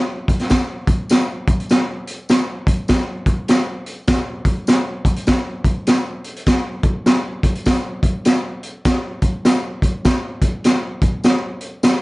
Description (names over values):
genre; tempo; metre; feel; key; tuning
soul; 101 BPM; 4/4; swing 62% on 8ths; none; none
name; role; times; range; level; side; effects
raw garage drum kit; drums; 0.3-12.0 s; hi-hat, kick drum, snare drum; -16 LUFS; equal; none
tambourine; percussion; 0.5-12.0 s; none; -36 LUFS; left 4 dB; none
room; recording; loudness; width
wet small room reverb, RT60 0.6 s; dark, warm production, nothing above 10.4 kHz; -16 LUFS; side -21 dB against mid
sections
0.0-12.0 A section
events
none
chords
none